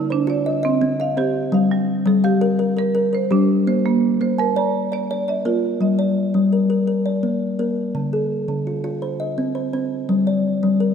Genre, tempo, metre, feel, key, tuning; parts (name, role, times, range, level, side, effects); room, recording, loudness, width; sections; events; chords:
southern african traditional, mbira-style interlocking cycle; 112 BPM (dotted quarters); 12/8; straight; G equiheptatonic; A4 = 435 Hz
kalimba; arpeggios; 0.0-10.9 s; D3 to A5-29c; -18 LUFS; left 2 dB
marimba with hard mallets; arpeggios; 0.0-6.2 s; G3 to Bb5+43c; -22 LUFS; right 8 dB
moderate lush hall reverb, RT60 3.0 s; rough home demo mix; -17 LUFS; side -7 dB against mid
0.0-5.8 A section; 5.8-10.9 B section
0.5 C; 1.5 Gm; 3.7 Bb; 5.8 Gm; 6.9 Bb; 8.0 Dm; 9.0 C; 10.1 Gm